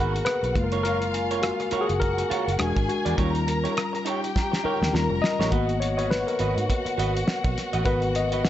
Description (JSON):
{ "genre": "lush 1970s-style soul", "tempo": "103 BPM", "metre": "4/4", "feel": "swing 58% on 16ths", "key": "unclear", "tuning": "A4 = 440 Hz", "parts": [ { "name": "dark studio string section", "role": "second line", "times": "0.0-8.5 s", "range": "E#4 to A#5", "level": "-30 LUFS", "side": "left 1 dB", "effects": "none" }, { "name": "tine electric piano", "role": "accompaniment", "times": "0.0-8.5 s", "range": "G3 to D#5", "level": "-27 LUFS", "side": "left 3 dB", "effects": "none" }, { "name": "electric guitar through a small old amp", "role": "riff", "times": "0.0-8.5 s", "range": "D#4 to D#5", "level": "-32 LUFS", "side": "right 7 dB", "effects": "none" }, { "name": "vintage muted fingered electric bass", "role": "bass", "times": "0.0-8.5 s", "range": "E1 to G#2", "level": "-28 LUFS", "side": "right 1 dB", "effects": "none" }, { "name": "cloth-damped thuddy drum kit", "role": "drums", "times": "0.2-8.5 s", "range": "hi-hat, kick drum, rim click, snare drum", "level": "-28 LUFS", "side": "equal", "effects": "none" }, { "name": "vibraphone with soft mallets", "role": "texture", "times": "1.1-8.5 s", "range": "G#5 to A#5", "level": "-39 LUFS", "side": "left 2 dB", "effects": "none" } ], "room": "small room ambience", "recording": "nothing above 7.9 kHz", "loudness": "-22 LUFS", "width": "side -12 dB against mid", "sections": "0.0-8.5 A section", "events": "tine electric piano solo 0.0-8.5; drum fill 4.4-5.5", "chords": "0.0 G#m7; 0.6 F#maj7; 2.6 E9; 3.2 D#7; 5.5 G#m7" }